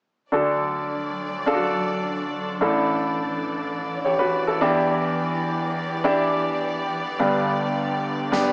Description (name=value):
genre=piano-driven pop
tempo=105 BPM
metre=4/4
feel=straight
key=D major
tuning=A4 = 440 Hz
part: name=bright concert grand piano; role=accompaniment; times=0.3-8.5 s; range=G1 to C#5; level=-24 LUFS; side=equal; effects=none
part: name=warm studio string section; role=sustained chords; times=0.3-8.5 s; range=D3 to D5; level=-31 LUFS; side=equal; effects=none
part: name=snare drum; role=drums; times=8.3-8.5 s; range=none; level=-30 LUFS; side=equal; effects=none
room=moderate stone room reverb, RT60 1.0 s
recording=rough rehearsal-room recording, small speaker sound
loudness=-24 LUFS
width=mono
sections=0.3-8.5 A section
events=drum fill 8.3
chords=0.3 D; 2.6 Asus4; 4.6 Em7; 7.2 G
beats=| 0.32 0.89 1.47 2.04 | 2.61 3.18 3.75 4.33 | 4.90 5.47 6.04 6.61 | 7.19 7.76 8.33